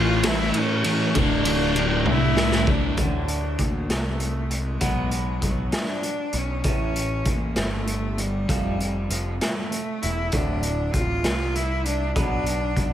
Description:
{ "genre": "quiet-loud alternative rock", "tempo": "65 BPM (dotted quarters)", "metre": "6/8", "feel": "straight", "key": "D minor", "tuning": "A4 = 440 Hz", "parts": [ { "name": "rich cello", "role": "melody", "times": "0.0-12.9 s", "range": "F3 to F4", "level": "-28 LUFS", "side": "equal", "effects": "slapback echo" }, { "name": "distorted electric guitar", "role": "riff", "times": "0.0-3.0 s", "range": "D2 to A4", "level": "-29 LUFS", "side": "left 1 dB", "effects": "distortion, slapback echo" }, { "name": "thick fuzz guitar", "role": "riff", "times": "0.0-3.0 s", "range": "D2 to A3", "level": "-28 LUFS", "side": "left 9 dB", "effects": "distortion, slapback echo" }, { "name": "thick fuzz guitar", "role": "riff", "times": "0.0-3.0 s", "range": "D2 to A3", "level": "-28 LUFS", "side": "right 9 dB", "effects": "distortion, slapback echo" }, { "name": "fuzz picked electric bass", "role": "bass", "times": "0.0-12.9 s", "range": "D1 to D2", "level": "-27 LUFS", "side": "equal", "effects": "overdrive" }, { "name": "raw garage drum kit", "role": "drums", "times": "0.2-12.9 s", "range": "hi-hat, kick drum, ride cymbal, snare drum, toms", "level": "-25 LUFS", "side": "equal", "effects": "none" }, { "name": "twangy electric guitar", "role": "arpeggios", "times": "3.0-12.9 s", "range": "D2 to B3", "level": "-33 LUFS", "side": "equal", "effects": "spring reverb, slapback echo, tape echo" } ], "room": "light reverb, studio ambience", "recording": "none", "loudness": "-21 LUFS", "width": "side -11 dB against mid", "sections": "0.0-3.0 A section; 3.0-12.9 B section", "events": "drum fill 2.1-3.0", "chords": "0.0 A; 1.2 Dm; 3.0 D5; 4.8 Bm; 6.6 A; 8.5 F; 10.3 Dm; 12.2 Bm" }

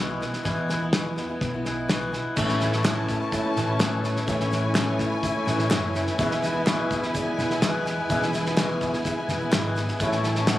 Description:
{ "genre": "indie folk with a building arrangement", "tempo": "126 BPM", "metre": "4/4", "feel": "straight", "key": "A major", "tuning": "A4 = 441 Hz", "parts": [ { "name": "picked swing-style acoustic guitar", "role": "accompaniment", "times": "0.0-10.6 s", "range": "E2 to E4", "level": "-28 LUFS", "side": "left 2 dB", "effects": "none" }, { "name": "picked electric bass", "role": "bass", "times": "0.0-10.6 s", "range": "E1 to A2", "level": "-29 LUFS", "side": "equal", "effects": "none" }, { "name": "loose indie drum kit", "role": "drums", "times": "0.2-10.6 s", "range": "crash cymbal, kick drum, snare drum", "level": "-27 LUFS", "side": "equal", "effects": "none" }, { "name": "dark upright piano", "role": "accompaniment", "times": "2.4-10.6 s", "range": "A1 to F#5", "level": "-30 LUFS", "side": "right 1 dB", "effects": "none" }, { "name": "rich chamber string section", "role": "sustained chords", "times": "2.4-10.6 s", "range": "E4 to A5", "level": "-31 LUFS", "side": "equal", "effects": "none" }, { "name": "tube shaker", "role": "percussion", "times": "2.4-10.6 s", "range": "none", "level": "-45 LUFS", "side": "right 2 dB", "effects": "none" }, { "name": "group handclap", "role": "percussion", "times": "2.9-10.6 s", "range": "none", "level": "-36 LUFS", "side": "right 1 dB", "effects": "none" } ], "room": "light reverb", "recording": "recorded on a phone in the room, club reverb, compression", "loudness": "-22 LUFS", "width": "side -14 dB against mid", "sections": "0.0-2.4 A section; 2.4-10.6 B section", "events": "none", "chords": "0.0 E; 2.4 A; 6.2 E; 10.0 A" }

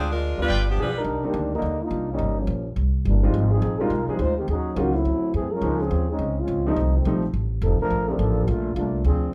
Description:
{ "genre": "jazz, big band swing", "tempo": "210 BPM", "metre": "4/4", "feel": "swing 61% on 8ths", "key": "C minor", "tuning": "A4 = 440 Hz", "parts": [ { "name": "clear saxophone section", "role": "melody", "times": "0.0-1.0 s", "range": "F3 to B4", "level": "-28 LUFS", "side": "equal", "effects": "none" }, { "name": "warm concert grand piano", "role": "accompaniment", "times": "0.0-8.5 s", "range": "F3 to Ab4", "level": "-30 LUFS", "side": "equal", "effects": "none" }, { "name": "upright bass", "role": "bass", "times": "0.0-9.3 s", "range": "F1 to F#2", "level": "-26 LUFS", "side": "equal", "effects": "none" }, { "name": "brilliant trumpet section", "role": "stabs", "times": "0.5-0.6 s", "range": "F4 to G5", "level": "-33 LUFS", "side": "equal", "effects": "none" }, { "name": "warm trombone section", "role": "second line", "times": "0.8-9.3 s", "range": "D3 to C5", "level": "-28 LUFS", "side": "equal", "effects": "none" } ], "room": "moderate large studio reverb, RT60 0.8 s", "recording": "band playing live in one room", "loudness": "-23 LUFS", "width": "mono", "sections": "0.0-1.1 A section; 1.1-9.3 B section", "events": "trombone section solo 1.1-9.3", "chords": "0.5 G7; 1.1 Cm9; 2.2 Gm7b5; 2.8 C7; 3.3 Fm7; 4.5 Ebm7; 5.1 D9; 5.6 Dbmaj7; 6.8 F7; 7.9 Bbmaj7" }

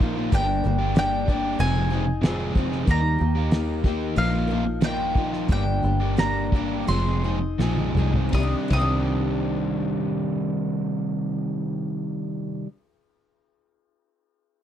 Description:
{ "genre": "folk rock and heartland rock", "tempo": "80-94 BPM", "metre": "4/4", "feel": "straight", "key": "C minor", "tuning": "A4 = 440 Hz", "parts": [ { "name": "mandolin", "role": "melody", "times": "0.0-12.6 s", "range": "F5 to Eb6", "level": "-28 LUFS", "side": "equal", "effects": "none" }, { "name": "picked old ladder-braced acoustic guitar", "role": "accompaniment", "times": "0.0-12.8 s", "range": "G2 to Bb4", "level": "-31 LUFS", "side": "left 6 dB", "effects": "none" }, { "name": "crunchy overdriven guitar", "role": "riff", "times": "0.0-12.7 s", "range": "F2 to Ab4", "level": "-26 LUFS", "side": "right 1 dB", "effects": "none" }, { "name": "fingered electric bass", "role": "bass", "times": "0.0-12.6 s", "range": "F1 to Eb2", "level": "-26 LUFS", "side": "equal", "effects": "none" }, { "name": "cloth-damped thuddy drum kit", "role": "drums", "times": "0.0-8.9 s", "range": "hi-hat, kick drum, ride cymbal, snare drum, toms", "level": "-22 LUFS", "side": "equal", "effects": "none" } ], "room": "little or no reverb", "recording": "dry, close 1970s-style studio recording", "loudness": "-21 LUFS", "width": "side -10 dB against mid", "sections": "0.0-8.3 A section; 8.3-11.3 B section", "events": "slowing down 2.9-8.3; drum fill 7.6-8.3", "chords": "0.3 Gm; 1.6 Fm7; 2.9 Eb; 4.2 Bbsus4; 5.5 Gm; 6.9 Fm7; 8.3 Cmadd9" }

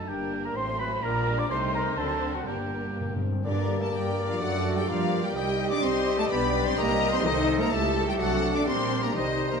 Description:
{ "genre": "quick classical-period movement for symphony orchestra", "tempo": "126 BPM", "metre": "2/4", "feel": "straight", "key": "G minor", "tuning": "A4 = 441 Hz", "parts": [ { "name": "clear studio violin section", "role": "melody", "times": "0.0-9.6 s", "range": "F#4 to D6", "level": "-35 LUFS", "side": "left 5 dB", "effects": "none" }, { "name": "bright concert flute", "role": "second line", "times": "0.0-9.6 s", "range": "D5 to D6", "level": "-36 LUFS", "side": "left 2 dB", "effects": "none" }, { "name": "rich chamber violin section", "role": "second line", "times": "0.0-9.6 s", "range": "A3 to Eb5", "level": "-35 LUFS", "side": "left 3 dB", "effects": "none" }, { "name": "warm clarinet", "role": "second line", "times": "0.0-9.6 s", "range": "D4 to D5", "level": "-36 LUFS", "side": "left 1 dB", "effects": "none" }, { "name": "warm oboe", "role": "second line", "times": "0.0-9.6 s", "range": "C5 to D6", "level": "-35 LUFS", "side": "right 1 dB", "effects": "none" }, { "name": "warm French horn section", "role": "sustained chords", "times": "0.0-9.6 s", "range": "Eb3 to E4", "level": "-34 LUFS", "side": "left 4 dB", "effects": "none" }, { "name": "clear chamber double bass section", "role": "bass", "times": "0.0-9.6 s", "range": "G1 to G2", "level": "-32 LUFS", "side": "right 3 dB", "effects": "none" }, { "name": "rich chamber cello section", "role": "bass", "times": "0.0-9.6 s", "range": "G2 to D4", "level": "-33 LUFS", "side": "right 4 dB", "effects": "none" }, { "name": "warm chamber viola section", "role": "accompaniment", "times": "0.1-9.6 s", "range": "D4 to D5", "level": "-34 LUFS", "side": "left 2 dB", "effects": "none" }, { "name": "timpani", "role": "percussion", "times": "2.5-4.1 s", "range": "G2", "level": "-33 LUFS", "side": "left 1 dB", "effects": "none" }, { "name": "mellow bassoon", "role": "accompaniment", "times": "3.5-9.6 s", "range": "G3 to Bb3", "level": "-34 LUFS", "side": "right 1 dB", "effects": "none" }, { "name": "mellow trumpet section", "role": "stabs", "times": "3.5-9.6 s", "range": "G4 to C5", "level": "-35 LUFS", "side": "left 1 dB", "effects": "none" } ], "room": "moderate scoring stage reverb, RT60 2.0 s", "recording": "nothing above 10.6 kHz", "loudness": "-24 LUFS", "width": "side -5 dB against mid", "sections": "0.0-3.4 A section; 3.4-9.6 B section", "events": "timpani fill 2.5-3.4", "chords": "0.1 Gm; 0.6 F#dim/A; 1.0 Gm/Bb; 1.5 Adim/C; 2.0 D7; 2.5 Gm; 4.4 D/F#; 4.9 Gm; 5.4 Cm; 6.3 G/B; 6.8 Cm; 7.2 Adim/C; 7.7 A7/C#; 8.2 D7/C; 8.7 Gm/Bb" }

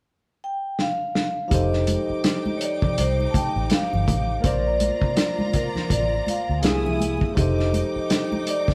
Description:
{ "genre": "lush 1970s-style soul", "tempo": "82 BPM", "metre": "4/4", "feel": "swing 58% on 16ths", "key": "unclear", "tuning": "A4 = 441 Hz", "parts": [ { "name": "vibraphone with medium hard mallets", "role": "melody", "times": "0.4-8.7 s", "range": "Bb4 to A5", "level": "-30 LUFS", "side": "equal", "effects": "none" }, { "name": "vintage drum kit", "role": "drums", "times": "0.8-8.7 s", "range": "hi-hat, kick drum, snare drum", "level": "-26 LUFS", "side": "equal", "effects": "none" }, { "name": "warm studio violin section", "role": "second line", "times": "1.5-8.7 s", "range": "Eb4 to D#6", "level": "-36 LUFS", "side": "equal", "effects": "none" }, { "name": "barky tine electric piano", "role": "accompaniment", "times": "1.5-8.7 s", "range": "C3 to E5", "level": "-30 LUFS", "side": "equal", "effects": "none" }, { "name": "vintage muted fingered electric bass", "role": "bass", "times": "1.5-8.0 s", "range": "F1 to D2", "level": "-27 LUFS", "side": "equal", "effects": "none" }, { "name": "congas", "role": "percussion", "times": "1.7-8.7 s", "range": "none", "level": "-33 LUFS", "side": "equal", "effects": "none" } ], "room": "moderate stone room reverb, RT60 1.1 s", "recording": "band playing live in one room", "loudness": "-23 LUFS", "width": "mono", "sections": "0.0-1.5 A section; 1.5-8.7 B section", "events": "drum fill 0.8-1.5", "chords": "0.0 N.C.; 1.5 F13; 4.4 Bbmaj9; 6.6 C7alt; 7.4 F13" }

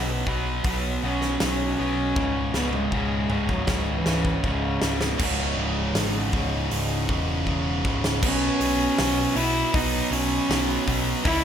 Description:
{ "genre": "quiet-loud alternative rock", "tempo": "79 BPM", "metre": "4/4", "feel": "straight", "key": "unclear", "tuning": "A4 = 440 Hz", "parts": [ { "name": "cranked stack guitar", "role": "riff", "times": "0.0-11.4 s", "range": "C#2 to B3", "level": "-27 LUFS", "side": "right 1 dB", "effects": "overdrive" }, { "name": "overdriven picked electric bass", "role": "bass", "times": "0.0-11.4 s", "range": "C#1 to B1", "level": "-29 LUFS", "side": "equal", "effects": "none" }, { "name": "huge arena drum kit", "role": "drums", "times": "0.3-11.4 s", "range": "crash cymbal, hi-hat, kick drum, snare drum, toms", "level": "-28 LUFS", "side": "equal", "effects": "none" }, { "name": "warm cello", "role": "melody", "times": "1.1-11.4 s", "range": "C#3 to E4", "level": "-26 LUFS", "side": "equal", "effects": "digital delay" }, { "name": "soft string machine", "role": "sustained chords", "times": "5.5-8.2 s", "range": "E3 to G#4", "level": "-37 LUFS", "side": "equal", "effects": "ensemble chorus" }, { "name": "heavy high-gain guitar", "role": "riff", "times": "5.2-11.4 s", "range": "C#2 to B3", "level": "-30 LUFS", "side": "right 1 dB", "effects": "distortion" } ], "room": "light reverb, small room ambience", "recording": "none", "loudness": "-22 LUFS", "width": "side -8 dB against mid", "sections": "0.0-5.2 A section; 5.2-8.2 B section; 8.2-11.4 C section", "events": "cello solo 0.0-5.2; drum fill 2.2-5.2, 7.5-8.2", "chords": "0.0 Bsus2; 2.2 C#5; 5.2 C#madd9; 8.2 Bsus2" }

